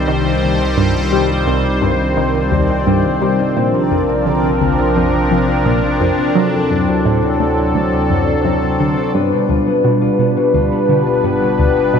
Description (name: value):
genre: ambient, sequencer-driven space music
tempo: 86 BPM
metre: 4/4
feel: straight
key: unclear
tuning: A4 = 441 Hz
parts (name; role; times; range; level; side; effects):
- sweeping resonant pad; sustained chords; 0.0-12.0 s; Eb3 to C5; -16 LUFS; equal; chorus
- concert harp; arpeggios; 0.0-12.0 s; B2 to C5; -19 LUFS; left 3 dB; auto-pan, low-pass filter, ping-pong delay
- round analog bass; bass; 0.0-12.0 s; G1 to D2; -24 LUFS; equal; none
- bubbling stepped-filter texture; texture; 0.0-9.2 s; D4 to D5; -28 LUFS; left 1 dB; chorus, built-in reverb
- tight sequenced synth; riff; 0.1-12.0 s; C2 to A3; -18 LUFS; equal; chorus, phaser, ping-pong delay
room: wet plate reverb, RT60 2.9 s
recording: none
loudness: -13 LUFS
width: side -7 dB against mid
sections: 0.0-9.1 A section; 9.1-12.0 B section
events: filter sweep on harp 9.1-12.0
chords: 0.0 Cm; 3.6 Bbadd9; 6.4 D7; 9.1 G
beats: 0.08 | 0.77 1.47 2.17 2.87 | 3.56 4.26 4.96 5.66 | 6.36 7.05 7.75 8.45 | 9.15 9.84 10.54 11.24 | 11.94